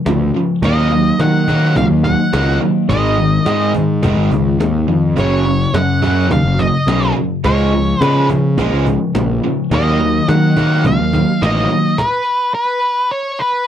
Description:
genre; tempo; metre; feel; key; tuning
classic rock; 106 BPM; 4/4; straight; unclear; A4 = 438 Hz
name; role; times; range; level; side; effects
distorted electric guitar; riff; 0.0-12.0 s; F#2 to D#4; -19 LUFS; left 11 dB; distortion
raw garage guitar; riff; 0.0-12.0 s; F#2 to A#3; -19 LUFS; right 9 dB; overdrive
fuzz picked electric bass; bass; 0.1-11.7 s; E#1 to D#3; -16 LUFS; equal; overdrive
cajon; drums; 0.1-12.1 s; none; -23 LUFS; equal; none
octave-fuzz lead guitar; melody; 0.7-13.7 s; B4 to F#5; -18 LUFS; equal; distortion
room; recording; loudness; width
little or no reverb; dry, close 1970s-style studio recording; -12 LUFS; side -10 dB against mid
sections
0.0-13.7 A section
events
stop 12.0-13.7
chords
0.0 C#; 0.6 D#m; 2.9 G#5; 5.2 F#5; 7.4 C#; 9.7 D#m; 12.0 N.C.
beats
0.06 | 0.63 1.20 1.76 2.33 | 2.90 3.47 4.04 4.60 | 5.17 5.74 6.31 6.88 | 7.45 8.01 8.58 9.15 | 9.72 10.29 10.85 11.42 | 11.98 12.55 13.11

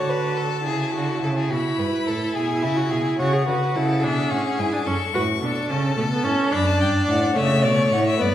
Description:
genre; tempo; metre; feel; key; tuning
classical, baroque-style fugue for string quartet; 72 BPM (dotted quarters); 12/8; straight; D major; A4 = 439 Hz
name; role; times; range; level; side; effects
rich violin; melody; 0.0-8.3 s; D5 to C#6; -27 LUFS; left 7 dB; none
rich violin; second line; 0.0-8.3 s; E4 to D5; -26 LUFS; left 2 dB; none
warm viola; accompaniment; 0.0-8.3 s; A3 to G#4; -24 LUFS; right 2 dB; none
rich cello; bass; 0.0-8.3 s; F#2 to D3; -24 LUFS; right 1 dB; none
room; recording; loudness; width
wet recital hall reverb, RT60 1.6 s; heard from further back in the room; -19 LUFS; side -11 dB against mid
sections
0.0-8.3 A section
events
none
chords
0.0 D; 1.5 Amaj13/G#; 3.2 C#m; 4.9 F#m (rootless); 6.5 D/F#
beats
0.66 1.51 2.35 | 3.19 4.03 4.87 5.70 | 6.53 7.36 8.20

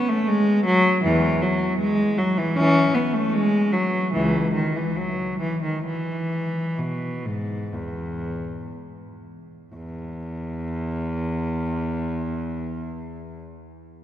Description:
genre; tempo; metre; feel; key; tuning
classical, baroque-style suite movement for unaccompanied cello; 57-80 BPM; 4/4; rubato; E major; A4 = 440 Hz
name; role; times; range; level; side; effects
dark cello; solo; 0.0-13.4 s; C#2 to C#4; -21 LUFS; equal; none
room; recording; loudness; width
wet cathedral reverb, RT60 5.2 s; none; -21 LUFS; side -11 dB against mid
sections
0.0-9.7 A section; 9.7-13.8 B section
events
slowing down 1.0-9.7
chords
none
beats
0.28 1.03 1.79 | 2.55 3.33 4.13 4.97 | 5.86 6.78 7.73 8.72 | 9.75 10.75 11.75 12.76

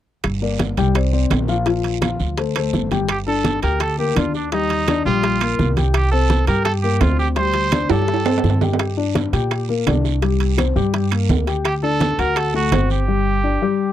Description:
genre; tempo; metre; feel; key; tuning
latin, salsa; 168 BPM; 4/4; straight; G minor; A4 = 440 Hz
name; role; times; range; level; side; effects
upright bass; bass; 0.2-13.6 s; G1 to Bb2; -20 LUFS; right 1 dB; none
bongos; percussion; 0.2-13.1 s; none; -28 LUFS; left 5 dB; none
claves; percussion; 0.2-12.9 s; none; -32 LUFS; right 20 dB; none
congas; percussion; 0.2-13.1 s; none; -24 LUFS; right 2 dB; none
guiro; percussion; 0.2-13.1 s; none; -35 LUFS; right 22 dB; none
timbales; percussion; 0.2-12.9 s; none; -25 LUFS; right 11 dB; none
dark concert grand piano; accompaniment; 0.4-13.9 s; F3 to G5; -22 LUFS; left 8 dB; none
bright trumpet; melody; 3.1-8.6, 11.7-13.9 s; D4 to C5; -22 LUFS; right 4 dB; none
room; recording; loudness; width
little or no reverb; dry, close 1970s-style studio recording; -16 LUFS; side -12 dB against mid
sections
0.2-3.1 A section; 3.1-13.9 B section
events
drum fill 7.9-8.8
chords
0.2 Gm; 1.0 Csus2; 1.7 Bb; 2.4 D5; 3.1 Gm; 4.5 Ebmaj9; 5.9 Csus2; 7.4 D7sus4; 8.8 Csus2; 11.7 Dsus4; 12.4 D7; 13.1 G5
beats
| 0.24 0.60 0.95 1.31 | 1.67 2.02 2.38 2.74 | 3.09 3.45 3.81 4.16 | 4.52 4.88 5.23 5.59 | 5.95 6.30 6.66 7.01 | 7.37 7.73 8.09 8.44 | 8.80 9.15 9.51 9.87 | 10.22 10.58 10.94 11.30 | 11.65 12.01 12.37 12.72 | 13.08 13.44 13.79

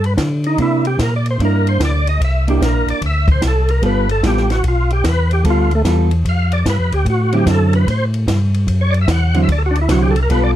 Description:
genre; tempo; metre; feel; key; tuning
soul jazz organ trio; 148 BPM; 4/4; swing 65% on 8ths; unclear; A4 = 441 Hz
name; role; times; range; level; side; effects
percussive tonewheel organ; melody; 0.0-10.5 s; A3 to F#5; -20 LUFS; equal; slow rotary speaker, overdrive, chorus vibrato
mellow tonewheel organ; bass; 0.0-10.6 s; G1 to D3; -16 LUFS; equal; slow rotary speaker
compact cocktail drum kit; drums; 0.0-10.4 s; hi-hat, kick drum, ride cymbal, snare drum; -22 LUFS; equal; none
vintage hollow-body jazz guitar; accompaniment; 0.6-10.5 s; D3 to A4; -18 LUFS; right 2 dB; none
room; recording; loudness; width
light reverb; dark, warm production; -13 LUFS; side -12 dB against mid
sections
0.0-10.6 A section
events
tonewheel organ solo 0.0-10.6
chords
0.0 G; 0.6 C9; 3.8 G9; 7.1 D9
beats
0.18 | 0.58 0.99 1.40 1.80 | 2.21 2.61 3.02 3.42 | 3.83 4.23 4.63 5.04 | 5.45 5.85 6.25 6.66 | 7.06 7.47 7.87 8.28 | 8.68 9.09 9.49 9.90 | 10.30

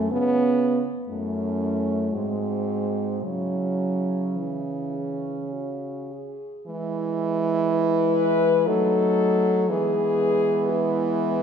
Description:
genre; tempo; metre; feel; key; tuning
classical, lyrical piece for horn quartet; 50-63 BPM; 3/4; rubato; C# minor, E major from 6.7 s; A4 = 439 Hz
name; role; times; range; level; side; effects
dark French horn; melody; 0.0-11.4 s; E4 to B4; -26 LUFS; left 5 dB; none
warm French horn; second line; 0.0-11.4 s; B3 to E4; -30 LUFS; right 8 dB; none
dark French horn; accompaniment; 0.0-11.4 s; E3 to B3; -26 LUFS; right 1 dB; none
warm French horn; bass; 0.0-11.4 s; F#2 to F#3; -28 LUFS; right 2 dB; none
room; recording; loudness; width
moderate scoring stage reverb, RT60 2.0 s; recorded in a church or concert hall; -21 LUFS; side -7 dB against mid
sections
0.0-6.7 A section; 6.7-11.4 B section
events
none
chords
0.1 C#m; 1.1 F#m7; 2.1 G#7; 3.3 C#m; 6.7 E; 8.7 D#dim/F#; 9.7 E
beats
| 0.11 1.09 2.14 | 3.25 4.39 5.53 | 6.67 7.69 8.66 | 9.68 10.69

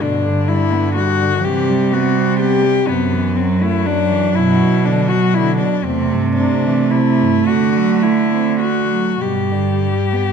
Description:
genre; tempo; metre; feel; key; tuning
classical, lyrical piece for cello ensemble; 32-43 BPM (dotted quarters); 6/8; rubato; G major; A4 = 440 Hz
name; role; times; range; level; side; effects
dark cello; melody; 0.0-10.3 s; B3 to G4; -19 LUFS; left 9 dB; none
dark cello; second line; 0.0-10.3 s; D3 to A3; -18 LUFS; right 9 dB; none
warm cello; accompaniment; 0.0-10.3 s; E2 to C4; -22 LUFS; left 3 dB; none
warm cello; bass; 0.0-10.3 s; F#2 to D3; -20 LUFS; right 2 dB; none
room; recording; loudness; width
light reverb; close, detailed microphones; -13 LUFS; side -6 dB against mid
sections
0.0-10.3 A section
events
none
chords
0.0 G; 1.4 Cmaj7; 2.9 F#m7b5; 4.4 Bm/F#; 5.8 C/E; 7.5 D7; 9.2 G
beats
| 0.01 1.43 | 2.88 4.36 | 5.84 7.46 | 9.20

